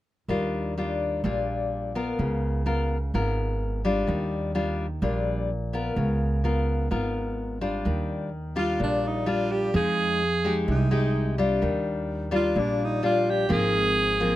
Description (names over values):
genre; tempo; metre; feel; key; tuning
bossa nova; 127 BPM; 4/4; straight; Eb major; A4 = 439 Hz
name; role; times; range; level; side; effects
nylon-string guitar; accompaniment; 0.3-14.4 s; Ab2 to Bb4; -26 LUFS; left 2 dB; none
upright bass; bass; 0.3-14.4 s; Ab1 to F2; -28 LUFS; right 1 dB; none
clear alto saxophone; melody; 8.6-14.4 s; D4 to Ab4; -26 LUFS; right 2 dB; none
room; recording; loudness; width
little or no reverb; close, detailed microphones; -23 LUFS; side -14 dB against mid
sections
0.3-7.8 A section; 7.8-14.4 B section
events
none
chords
0.3 Ebmaj9; 2.2 Db6; 4.1 Ebmaj9; 6.0 Db6; 7.8 Ebmaj9; 9.7 Fm9; 11.6 Ebmaj9; 13.5 Ab69